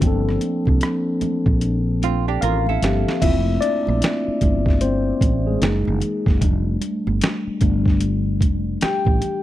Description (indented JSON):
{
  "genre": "R&B, neo-soul",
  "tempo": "75 BPM",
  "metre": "4/4",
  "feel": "swing 62% on 16ths",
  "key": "unclear",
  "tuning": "A4 = 440 Hz",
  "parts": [
    { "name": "mellow tine electric piano", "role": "accompaniment", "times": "0.0-9.4 s", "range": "F3 to G5", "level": "-22 LUFS", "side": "left 3 dB", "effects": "phaser" },
    { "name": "woody fretless electric bass", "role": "bass", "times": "0.0-9.2 s", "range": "F1 to C2", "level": "-21 LUFS", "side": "right 1 dB", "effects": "none" },
    { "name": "boom bap sampler-style drum kit", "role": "drums", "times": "0.0-9.4 s", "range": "crash cymbal, hi-hat, kick drum, rim click, snare drum", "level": "-20 LUFS", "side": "right 1 dB", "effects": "none" },
    { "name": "congas", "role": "percussion", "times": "0.0-9.4 s", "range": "none", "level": "-32 LUFS", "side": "right 10 dB", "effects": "none" },
    { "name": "hollow-body jazz guitar", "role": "second line", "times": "2.0-3.2 s", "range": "C4 to Bb4", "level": "-24 LUFS", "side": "right 14 dB", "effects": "none" }
  ],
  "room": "little or no reverb",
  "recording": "dry, close 1970s-style studio recording",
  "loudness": "-17 LUFS",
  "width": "side -14 dB against mid",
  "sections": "0.0-3.2 A section; 3.2-9.4 B section",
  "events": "drum fill 1.6-3.2; tine electric piano solo 3.2-9.4",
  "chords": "0.0 Gm11; 3.2 Gm11/F; 5.6 Gb69; 6.4 F69"
}